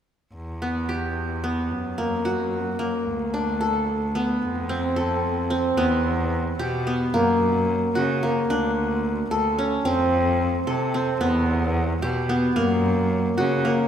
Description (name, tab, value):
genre	contemporary instrumental, chamber music in an uneven meter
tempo	221 BPM (eighths)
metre	5/8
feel	straight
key	unclear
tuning	A4 = 439 Hz
part	rich cello	bass	0.3-13.9 s	D2 to C#3	-26 LUFS	equal	none
part	qanun	arpeggios	0.6-13.9 s	A#3 to A4	-22 LUFS	equal	none
room	wet concert hall reverb, RT60 2.6 s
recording	none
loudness	-21 LUFS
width	side -9 dB against mid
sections	0.3-5.8 A section; 5.8-13.9 B section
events	none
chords	0.3 Em; 1.7 F#; 3.1 D5; 4.4 F; 5.8 Em; 7.1 F#; 8.5 D5; 9.9 F; 11.2 Em; 12.6 F#